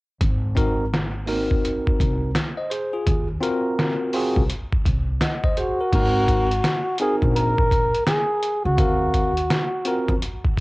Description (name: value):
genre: hip hop, jazz-hop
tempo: 84 BPM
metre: 4/4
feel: swing 63% on 16ths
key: unclear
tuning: A4 = 440 Hz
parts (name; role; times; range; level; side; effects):
- upright bass; bass; 0.2-10.2 s; Ab1 to F2; -25 LUFS; equal; none
- trip hop sampler-style drum kit; drums; 0.2-10.6 s; crash cymbal, hi-hat, kick drum, snare drum; -23 LUFS; equal; cassette tape
- bell-like tine electric piano; accompaniment; 0.6-10.1 s; Bb3 to Gb5; -24 LUFS; equal; slow stereo tremolo, cassette tape
- breathy flugelhorn; melody; 5.6-10.0 s; Gb4 to Bb4; -22 LUFS; equal; cassette tape
room: light reverb, digital ambience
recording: home recording on cassette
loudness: -19 LUFS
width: side -22 dB against mid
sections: 0.2-5.9 A section; 5.9-10.6 B section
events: none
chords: 0.2 Ab9; 3.1 Ebm69; 5.9 Ab9; 8.8 Ebm69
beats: | 0.21 0.92 1.64 2.35 | 3.07 3.78 4.50 5.21 | 5.92 6.64 7.35 8.07 | 8.78 9.49 10.21